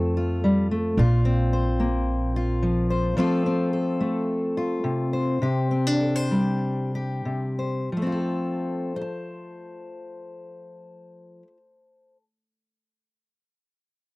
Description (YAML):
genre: folk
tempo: 88-110 BPM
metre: 4/4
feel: straight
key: F major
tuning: A4 = 440 Hz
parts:
  - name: fingerpicked steel-string acoustic guitar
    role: accompaniment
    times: 0.0-12.2 s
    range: Bb2 to A5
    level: -23 LUFS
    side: left 1 dB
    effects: none
  - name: upright bass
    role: bass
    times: 0.0-3.1 s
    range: Bb1 to F2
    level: -24 LUFS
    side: right 1 dB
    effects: none
room: light reverb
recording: dry, close 1970s-style studio recording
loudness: -22 LUFS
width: side -22 dB against mid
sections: 0.0-7.9 A section; 7.9-13.4 B section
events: slowing down 3.2-7.9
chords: 0.0 F; 1.0 Bbsus2; 3.2 F; 5.4 Csus2; 7.9 F